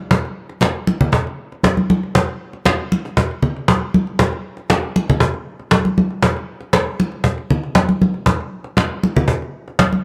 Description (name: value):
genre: disco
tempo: 118 BPM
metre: 4/4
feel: straight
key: none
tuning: none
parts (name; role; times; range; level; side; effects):
- cajon; drums; 0.1-10.0 s; none; -20 LUFS; equal; none
- congas; percussion; 0.1-10.0 s; none; -20 LUFS; equal; none
room: light reverb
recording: none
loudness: -18 LUFS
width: mono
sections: 0.0-10.0 A section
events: none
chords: none